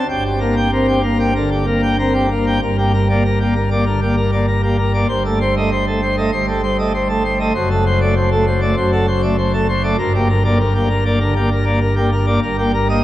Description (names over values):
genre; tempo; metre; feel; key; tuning
classical, organ toccata; 98 BPM; 4/4; straight; G minor; A4 = 440 Hz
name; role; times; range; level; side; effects
pipe organ, plenum; solo; 0.0-13.0 s; F#1 to G5; -14 LUFS; equal; none
room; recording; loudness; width
wet cathedral reverb, RT60 4.3 s; worn, warbling old tape, cassette tape, warbly pitch drift; -14 LUFS; side -14 dB against mid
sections
0.0-2.6 A section; 2.6-13.0 B section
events
none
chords
0.1 Gm; 5.1 Am7b5/G; 7.6 D7/F#; 10.0 Gm; 12.4 Eb/G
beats
| 0.09 0.72 1.36 2.00 | 2.63 3.25 3.87 4.48 | 5.10 5.72 6.33 6.94 | 7.56 8.16 8.78 9.39 | 10.00 10.60 11.21 11.82 | 12.43